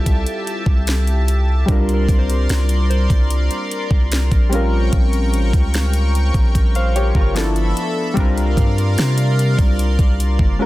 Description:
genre	contemporary R&B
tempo	74 BPM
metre	4/4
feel	straight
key	unclear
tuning	A4 = 440 Hz
part	warm analog keys	accompaniment	0.0-10.7 s	F3 to F5	-23 LUFS	left 1 dB	chorus
part	chorused pulse-width pad	sustained chords	0.0-10.7 s	G4 to Db6	-26 LUFS	equal	none
part	long sustained 808-style bass	bass	0.0-10.6 s	Gb1 to C3	-17 LUFS	equal	none
part	soft synth bell	texture	0.0-8.0 s	G4 to Db6	-33 LUFS	right 4 dB	chorus, digital delay
part	trap drum kit	drums	0.1-10.6 s	hi-hat, kick drum, snare drum	-18 LUFS	equal	none
room	digital ambience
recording	dense, heavily limited modern master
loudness	-14 LUFS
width	side -17 dB against mid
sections	0.0-10.7 A section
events	none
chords	0.0 Fmaj9; 1.7 C9sus4; 4.5 Bbm6; 7.4 G13; 8.2 C9sus4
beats	0.06 0.87 | 1.68 2.50 3.31 4.12 | 4.93 5.74 6.55 7.36 | 8.17 8.98 9.79 10.60

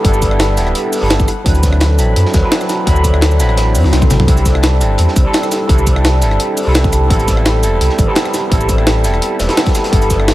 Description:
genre	liquid drum and bass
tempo	170 BPM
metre	4/4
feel	straight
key	unclear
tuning	A4 = 439 Hz
part	overdriven tine electric piano	accompaniment	0.0-10.3 s	F#3 to B5	-17 LUFS	right 1 dB	phaser, tape echo
part	concert harp	arpeggios	0.0-10.3 s	A4 to A5	-23 LUFS	left 3 dB	tape echo
part	sub bass with octave	bass	0.0-10.3 s	D1 to F#2	-13 LUFS	equal	none
part	crunchy breakbeat drum kit	drums	0.0-10.3 s	hi-hat, snare drum	-26 LUFS	equal	high-pass filter on hats, high-pass filter on snare, high-pass filter on room
part	electronic kick drum	drums	0.0-10.2 s	none	-14 LUFS	equal	none
part	jungle sampler-style drum kit	drums	0.0-10.3 s	hi-hat, rim click, shaker, snare drum, toms	-18 LUFS	equal	none
part	swell	sound effects	3.7-4.3 s	none	-25 LUFS	left 2 dB	none
room	little or no reverb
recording	faint mains hum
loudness	-10 LUFS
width	side -16 dB against mid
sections	0.0-10.3 A section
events	swell 3.7-4.3; drum fill 3.9-4.3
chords	0.0 G69; 1.3 D13; 4.3 C69; 7.1 Am9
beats	| 0.05 0.40 0.75 1.10 | 1.46 1.81 2.16 2.52 | 2.87 3.22 3.58 3.93 | 4.28 4.63 4.99 5.34 | 5.69 6.05 6.40 6.75 | 7.11 7.46 7.81 8.16 | 8.52 8.87 9.22 9.57 | 9.93 10.28

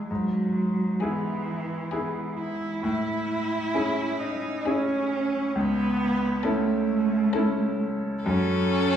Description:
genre	classical, slow romantic movement for piano trio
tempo	66 BPM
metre	3/4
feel	rubato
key	unclear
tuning	A4 = 440 Hz
part	rich cello	second line	0.0-9.0 s	E3 to E4	-26 LUFS	right 3 dB	none
part	bright grand piano	accompaniment	0.0-9.0 s	C#2 to A4	-27 LUFS	left 2 dB	none
part	clear violin	melody	1.0-9.0 s	G#4 to A4	-33 LUFS	left 8 dB	none
room	wet recital hall reverb, RT60 1.7 s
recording	heard from further back in the room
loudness	-24 LUFS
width	side -9 dB against mid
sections	0.0-9.0 A section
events	none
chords	0.1 E/G#; 2.8 Amaj7; 5.6 A/C#; 8.2 F#m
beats	| 0.10 1.00 1.91 | 2.83 3.74 4.66 | 5.55 6.44 7.34 | 8.25

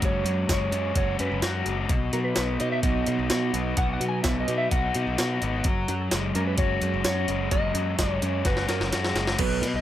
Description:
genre	indie rock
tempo	128 BPM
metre	4/4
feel	straight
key	unclear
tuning	A4 = 442 Hz
part	electric guitar through a small old amp	riff	0.0-9.8 s	B2 to F#4	-35 LUFS	right 9 dB	lush chorus, tape echo
part	raw garage guitar	riff	0.0-9.8 s	B2 to F#4	-28 LUFS	left 4 dB	overdrive
part	modern bright picked electric bass	bass	0.0-9.8 s	F#1 to B2	-29 LUFS	equal	none
part	jungle sampler-style drum kit	drums	0.0-9.7 s	crash cymbal, hi-hat, kick drum, snare drum, tambourine	-27 LUFS	equal	overdrive
part	mellow electric guitar	melody	0.1-9.8 s	F#4 to G#5	-31 LUFS	equal	analog chorus
room	digital ambience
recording	none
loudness	-23 LUFS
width	side -12 dB against mid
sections	0.0-9.4 A section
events	drum fill 8.5-9.4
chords	0.0 F#sus2; 1.9 B; 5.6 F#sus2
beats	| 0.02 0.49 0.96 1.42 | 1.89 2.36 2.83 3.30 | 3.77 4.24 4.71 5.17 | 5.64 6.11 6.58 7.05 | 7.52 7.99 8.46 8.93 | 9.40

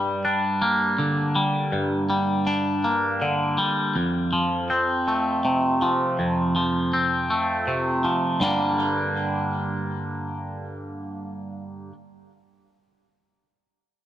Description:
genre	rock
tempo	54 BPM (dotted quarters)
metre	6/8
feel	straight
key	G minor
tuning	A4 = 439 Hz
part	twangy electric guitar	arpeggios	0.0-11.9 s	F2 to D4	-21 LUFS	equal	phaser, digital delay
room	moderate large studio reverb, RT60 1.4 s, digital ambience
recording	none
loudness	-21 LUFS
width	side -12 dB against mid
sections	0.0-8.4 A section; 8.4-10.7 B section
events	none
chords	0.0 Gm; 4.0 F; 8.4 Gm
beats	0.62 | 1.73 2.84 | 3.96 5.07 | 6.19 7.30 | 8.42 9.54

